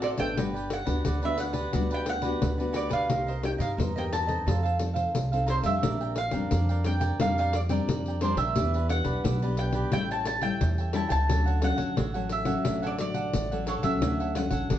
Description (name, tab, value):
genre	samba and choro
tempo	88 BPM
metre	4/4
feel	straight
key	D major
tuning	A4 = 440 Hz
part	mandolin	melody	0.0-14.8 s	C5 to A5	-31 LUFS	right 2 dB	plate reverb
part	cavaquinho	accompaniment	0.0-14.8 s	D4 to G5	-35 LUFS	right 3 dB	none
part	nylon-string guitar	accompaniment	0.0-14.8 s	G2 to A4	-32 LUFS	left 3 dB	none
part	upright bass	bass	0.0-14.8 s	G1 to G2	-29 LUFS	right 1 dB	none
part	pandeiro	percussion	0.0-14.8 s	none	-32 LUFS	left 3 dB	none
room	wet studio reverb, RT60 0.6 s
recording	heard from further back in the room, nothing above 7.9 kHz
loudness	-25 LUFS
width	side -11 dB against mid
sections	0.0-14.8 A section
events	none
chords	0.4 Gmaj7; 3.1 Cm7; 4.5 F7; 5.8 Bb69; 8.6 Em7; 9.9 A7; 11.3 Dmaj7